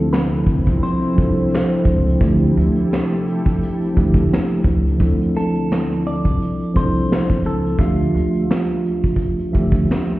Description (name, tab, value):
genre	lo-fi hip hop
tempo	86 BPM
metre	4/4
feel	swing 58% on 16ths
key	D minor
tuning	A4 = 441 Hz
part	clean electric guitar	melody	0.0-10.2 s	F4 to D5	-26 LUFS	right 2 dB	phaser, low-pass filter, tape echo
part	mellow tine electric piano	accompaniment	0.0-10.2 s	D2 to E5	-19 LUFS	equal	medium stereo tremolo, cassette tape, low-pass filter
part	lush unison pad	sustained chords	0.0-5.0 s	C3 to A4	-28 LUFS	equal	chorus, low-pass filter
part	upright bass	bass	0.0-9.8 s	C2 to D2	-20 LUFS	equal	none
part	vintage brush drum kit	drums	0.1-10.2 s	finger snaps, hi-hat, kick drum, snare drum	-19 LUFS	equal	none
part	tube shaker	percussion	0.1-10.2 s	none	-62 LUFS	right 5 dB	none
room	light reverb, studio reverb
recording	heard muffled through a wall, stone room reverb, vinyl crackle, EQ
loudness	-15 LUFS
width	side -17 dB against mid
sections	0.0-5.0 A section; 5.0-10.2 B section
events	none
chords	0.0 Dm9; 2.2 Fmaj13/D; 5.0 Dm9; 7.8 Fmaj13/D